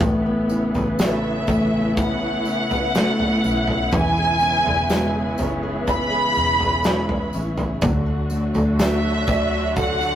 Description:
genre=pop ballad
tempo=62 BPM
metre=4/4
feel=straight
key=A major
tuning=A4 = 439 Hz
part: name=felt-muted upright piano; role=accompaniment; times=0.0-10.2 s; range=D3 to D5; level=-25 LUFS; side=equal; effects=none
part: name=warm studio string section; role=sustained chords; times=0.0-10.2 s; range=C#3 to F#4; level=-26 LUFS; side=equal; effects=none
part: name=fingerpicked steel-string acoustic guitar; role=arpeggios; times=0.0-10.2 s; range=A2 to C#5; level=-29 LUFS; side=equal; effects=none
part: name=vintage muted fingered electric bass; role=bass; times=0.0-10.2 s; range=E1 to D2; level=-27 LUFS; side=equal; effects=none
part: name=loose indie drum kit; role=drums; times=0.0-10.0 s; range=kick drum, snare drum, toms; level=-24 LUFS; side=equal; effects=none
part: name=tambourine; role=percussion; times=0.0-10.2 s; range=none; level=-42 LUFS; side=right 4 dB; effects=none
part: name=warm studio violin section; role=melody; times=1.0-10.2 s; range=E5 to B5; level=-22 LUFS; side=right 1 dB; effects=none
room=wet small room reverb, RT60 0.6 s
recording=rough rehearsal-room recording, tube saturation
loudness=-18 LUFS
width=side -10 dB against mid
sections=0.0-10.2 A section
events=none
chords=0.0 Aadd9; 3.9 E6; 7.8 D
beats=| 0.01 1.00 1.98 2.96 | 3.93 4.90 5.88 6.85 | 7.82 8.79 9.77

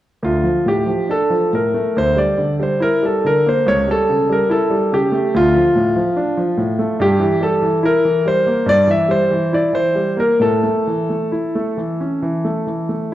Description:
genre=classical, baroque-style suite movement for grand piano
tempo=71 BPM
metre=4/4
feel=uneven beats, rubato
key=D minor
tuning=A4 = 440 Hz
part: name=bright concert grand piano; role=solo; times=0.2-13.1 s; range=C#2 to E5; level=-14 LUFS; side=equal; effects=none
room=moderate scoring stage reverb, RT60 1.6 s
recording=dark, warm production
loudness=-14 LUFS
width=side -13 dB against mid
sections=0.2-13.1 A section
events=none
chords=0.2 Dm; 1.9 Em7b5/D; 3.6 A7/C#; 5.3 Dm; 7.0 Edim/G; 10.4 A5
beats=| 0.22 1.08 1.94 2.80 | 3.65 4.49 5.33 6.15 | 6.99 7.82 8.66 9.51 | 10.40 11.32 12.21 13.10

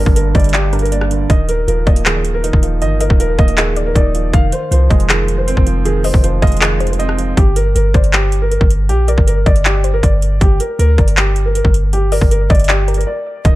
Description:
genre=hip hop, trap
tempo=158 BPM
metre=4/4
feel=half-time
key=G phrygian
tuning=A4 = 440 Hz
part: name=dark baby grand piano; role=melody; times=0.0-13.6 s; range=G4 to F5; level=-20 LUFS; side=equal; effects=ping-pong delay
part: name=soft round pluck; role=second line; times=0.0-13.1 s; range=Bb4 to F5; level=-26 LUFS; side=left 7 dB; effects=chorus, ping-pong delay
part: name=dark baby grand piano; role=accompaniment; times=0.0-7.4, 13.4-13.6 s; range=G2 to Eb4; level=-21 LUFS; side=right 4 dB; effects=none
part: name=warm 808-style bass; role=bass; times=0.0-13.6 s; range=Eb1 to D2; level=-15 LUFS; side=equal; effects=none
part: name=trap drum kit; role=drums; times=0.1-13.5 s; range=handclaps, hi-hat, kick drum, rim click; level=-13 LUFS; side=equal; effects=overdrive
room=digital ambience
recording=dark, warm production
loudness=-11 LUFS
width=side -17 dB against mid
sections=0.0-7.4 A section; 7.4-13.6 A section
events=break 13.1-13.4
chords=0.0 Gm; 1.3 Ebsus2; 4.3 Fm7; 7.4 Gm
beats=0.16 0.54 0.92 | 1.30 1.68 2.06 2.44 | 2.82 3.20 3.58 3.96 | 4.33 4.71 5.09 5.47 | 5.85 6.23 6.61 6.99 | 7.37 7.75 8.13 8.51 | 8.89 9.27 9.65 10.03 | 10.41 10.79 11.17 11.55 | 11.93 12.31 12.69 13.07 | 13.45

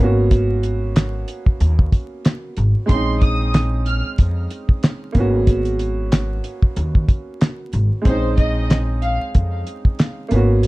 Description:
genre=hip hop, boom-bap hip-hop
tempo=93 BPM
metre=4/4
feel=swing 57% on 16ths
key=Bb phrygian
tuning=A4 = 439 Hz
part: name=warm upright piano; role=accompaniment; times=0.0-10.7 s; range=Ab3 to Gb4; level=-23 LUFS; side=right 2 dB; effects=cassette tape, high-pass filter, low-pass filter
part: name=upright bass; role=bass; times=0.0-10.7 s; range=Ab1 to F2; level=-19 LUFS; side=equal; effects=none
part: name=cloth-damped thuddy drum kit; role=drums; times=0.3-10.7 s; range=handclaps, hi-hat, kick drum, snare drum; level=-15 LUFS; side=equal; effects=vintage 12-bit sampler grit
part: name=warm studio violin section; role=melody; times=2.9-4.0, 8.1-9.2 s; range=C5 to F6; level=-26 LUFS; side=equal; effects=high-pass filter, low-pass filter, digital delay
room=little or no reverb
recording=dark, warm production, vinyl crackle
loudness=-16 LUFS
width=side -20 dB against mid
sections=0.0-8.1 A section; 8.1-10.7 B section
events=none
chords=0.0 Abm11; 2.9 Bbm11; 5.2 Abm11; 8.1 Bbm11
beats=| 0.31 0.96 1.60 2.25 | 2.89 3.54 4.18 4.83 | 5.47 6.12 6.76 7.41 | 8.05 8.70 9.35 9.99 | 10.63

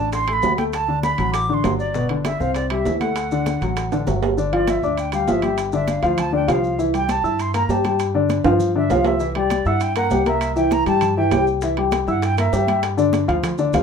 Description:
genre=Afro-Cuban jazz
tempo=198 BPM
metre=4/4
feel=straight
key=unclear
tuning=A4 = 440 Hz
part: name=breathy bright concert flute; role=melody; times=0.0-12.8 s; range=D5 to D6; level=-24 LUFS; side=right 3 dB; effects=slapback echo
part: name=warm grand piano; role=accompaniment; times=0.0-13.8 s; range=B2 to E6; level=-20 LUFS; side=left 3 dB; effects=none
part: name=upright bass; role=bass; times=0.0-13.8 s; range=G1 to G2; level=-25 LUFS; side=right 1 dB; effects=none
part: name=bongos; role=percussion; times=0.1-4.2, 11.6-13.8 s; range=none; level=-34 LUFS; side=left 7 dB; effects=none
part: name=congas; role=percussion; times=0.1-13.8 s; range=none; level=-30 LUFS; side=right 1 dB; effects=none
part: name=maracas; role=percussion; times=0.1-13.8 s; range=none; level=-43 LUFS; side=right 8 dB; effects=none
part: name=timbales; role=percussion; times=0.1-13.8 s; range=none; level=-26 LUFS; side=right 8 dB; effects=none
room=wet small room reverb, RT60 0.5 s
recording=rough home demo mix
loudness=-17 LUFS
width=side -6 dB against mid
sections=0.0-4.4 A section; 4.4-13.8 B section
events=drum fill 3.9-4.4, 8.4-9.2; flute solo 4.4-13.8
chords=0.0 D6; 1.9 G; 2.6 C69; 3.2 D; 4.4 G5; 6.8 C6; 8.0 G5; 9.2 C7; 12.8 G5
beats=0.12 0.43 | 0.73 1.03 1.34 1.64 | 1.95 2.25 2.55 2.85 | 3.16 3.46 3.76 4.07 | 4.37 4.67 4.97 5.28 | 5.58 5.88 6.18 6.48 | 6.79 7.09 7.39 7.69 | 8.00 8.30 8.60 8.90 | 9.20 9.51 9.81 10.11 | 10.41 10.71 11.02 11.32 | 11.62 11.92 12.22 12.53 | 12.83 13.13 13.43 13.74

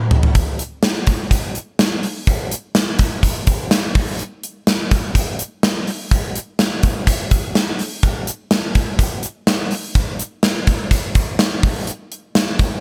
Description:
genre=pop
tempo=125 BPM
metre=4/4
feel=straight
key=none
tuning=none
part: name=gated 80s drum kit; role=drums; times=0.1-12.7 s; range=hi-hat, kick drum, snare drum, toms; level=-18 LUFS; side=equal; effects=none
room=light reverb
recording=none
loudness=-19 LUFS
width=mono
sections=0.4-12.8 A section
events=drum fill 0.0-0.4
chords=none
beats=| 0.35 0.83 1.31 1.79 | 2.27 2.75 3.23 3.71 | 4.19 4.67 5.15 5.63 | 6.11 6.59 7.07 7.55 | 8.03 8.51 8.99 9.47 | 9.95 10.43 10.91 11.39 | 11.87 12.35

